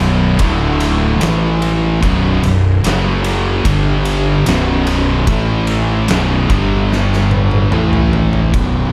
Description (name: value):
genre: stoner and doom metal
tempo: 74 BPM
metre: 4/4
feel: straight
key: B minor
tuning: A4 = 440 Hz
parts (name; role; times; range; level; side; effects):
- distorted electric guitar; riff; 0.0-8.5 s; B1 to A3; -22 LUFS; equal; distortion
- thick fuzz guitar; riff; 0.0-8.9 s; B1 to A3; -21 LUFS; equal; distortion
- thick fuzz guitar; riff; 0.0-8.9 s; B1 to A3; -21 LUFS; equal; distortion
- fuzz fingered electric bass; bass; 0.0-8.9 s; B0 to A1; -20 LUFS; equal; overdrive
- oversized low-tuned drum kit; drums; 0.4-8.7 s; kick drum, ride cymbal, snare drum, toms; -22 LUFS; equal; none
room: light reverb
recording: none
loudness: -14 LUFS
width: mono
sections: 0.0-8.5 A section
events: drum fill 6.9-8.5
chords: 0.4 D5; 1.2 A5; 2.0 B5; 2.8 F#5; 3.7 G5; 4.5 B5; 5.3 A5; 6.1 B5; 6.5 G5; 7.7 A5